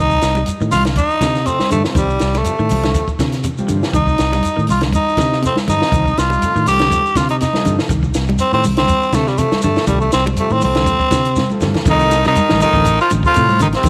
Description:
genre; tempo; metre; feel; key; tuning
afrobeat; 121 BPM; 4/4; swing 54% on 16ths; C dorian; A4 = 440 Hz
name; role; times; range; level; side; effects
growling tenor saxophone; melody; 0.0-13.9 s; G3 to G4; -19 LUFS; equal; none
clean electric guitar; arpeggios; 0.0-13.9 s; C3 to G3; -25 LUFS; equal; tremolo
fingered electric bass; bass; 0.0-13.9 s; A1 to C3; -21 LUFS; equal; none
compact cocktail drum kit; drums; 0.1-13.9 s; hi-hat, kick drum, snare drum; -24 LUFS; equal; none
shekere; percussion; 0.1-13.9 s; none; -29 LUFS; equal; none
congas; percussion; 0.4-13.9 s; none; -26 LUFS; equal; none
combo organ; accompaniment; 1.5-13.9 s; C3 to C4; -30 LUFS; equal; none
raspy tenor saxophone; second line; 11.9-13.9 s; C3 to F3; -25 LUFS; equal; none
room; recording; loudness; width
light reverb, small room ambience; none; -15 LUFS; mono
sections
0.0-11.9 A section; 11.9-13.9 B section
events
drum fill 11.4-11.9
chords
0.0 Cm69

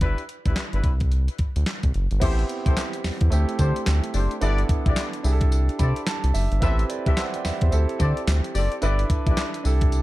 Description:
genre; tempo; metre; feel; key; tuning
R&B, new jack swing; 109 BPM; 4/4; swing 61% on 16ths; A minor; A4 = 440 Hz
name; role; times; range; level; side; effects
mellow horn section; stabs; 0.0-9.4 s; D4 to E5; -32 LUFS; left 4 dB; none
round analog bass; bass; 0.0-10.0 s; F#1 to D3; -21 LUFS; equal; none
crisp 8-bit digital drum machine; drums; 0.0-10.0 s; crash cymbal, handclaps, hi-hat, kick drum, snare drum, tambourine; -24 LUFS; equal; none
warm concert grand piano; accompaniment; 2.2-10.0 s; A3 to B5; -29 LUFS; right 4 dB; none
room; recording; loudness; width
little or no reverb; dark, warm production; -20 LUFS; side -17 dB against mid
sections
0.0-2.2 A section; 2.2-10.0 B section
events
grand piano fill 5.5-6.6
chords
0.0 G6; 0.8 N.C.; 2.2 Am7; 3.3 D7sus4; 4.4 G6; 5.2 C69; 6.6 Am7; 7.7 D7sus4; 8.8 G6

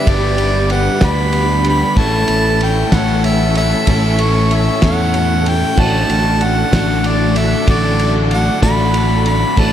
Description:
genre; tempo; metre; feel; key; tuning
folk rock and heartland rock; 63 BPM (dotted quarters); 6/8; straight; D major; A4 = 440 Hz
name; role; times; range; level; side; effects
clear harmonica; melody; 0.0-9.7 s; C#5 to B5; -18 LUFS; equal; tape echo
picked steel-string acoustic guitar; accompaniment; 0.0-9.7 s; A2 to B4; -22 LUFS; left 3 dB; lush chorus
clear symphonic string section; sustained chords; 0.0-9.7 s; F#3 to B4; -23 LUFS; right 1 dB; none
crunchy overdriven guitar; riff; 0.0-9.7 s; G2 to A4; -21 LUFS; right 1 dB; none
warm concert grand piano; accompaniment; 0.1-9.7 s; D4 to D5; -30 LUFS; right 5 dB; none
fingered electric bass; bass; 0.1-9.7 s; G1 to E2; -17 LUFS; equal; none
cloth-damped thuddy drum kit; drums; 0.1-9.7 s; crash cymbal, kick drum, ride cymbal, snare drum; -20 LUFS; equal; none
room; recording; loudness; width
moderate huge ambient reverb, RT60 7.7 s; dreamy mix soaked in reverb; -12 LUFS; side -10 dB against mid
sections
0.0-9.7 A section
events
none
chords
0.0 G; 2.0 A; 5.8 D/A

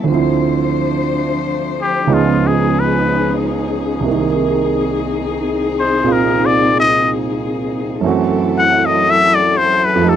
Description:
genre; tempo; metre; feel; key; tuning
jazz ballad; 60 BPM; 4/4; swing 68% on 8ths; unclear; A4 = 442 Hz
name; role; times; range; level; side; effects
warm concert grand piano; accompaniment; 0.0-10.2 s; C2 to G4; -16 LUFS; right 6 dB; none
warm studio cello section; sustained chords; 0.0-10.2 s; F3 to C5; -20 LUFS; left 5 dB; none
trumpet with straight mute; melody; 1.8-10.2 s; E#4 to F#5; -14 LUFS; left 4 dB; none
room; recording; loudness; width
light reverb; dry, close 1970s-style studio recording; -13 LUFS; side -9 dB against mid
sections
0.0-10.2 A section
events
muted trumpet solo 0.0-10.2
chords
0.1 Dm7; 2.1 C#9; 4.1 Cm7; 8.0 F#m7b5

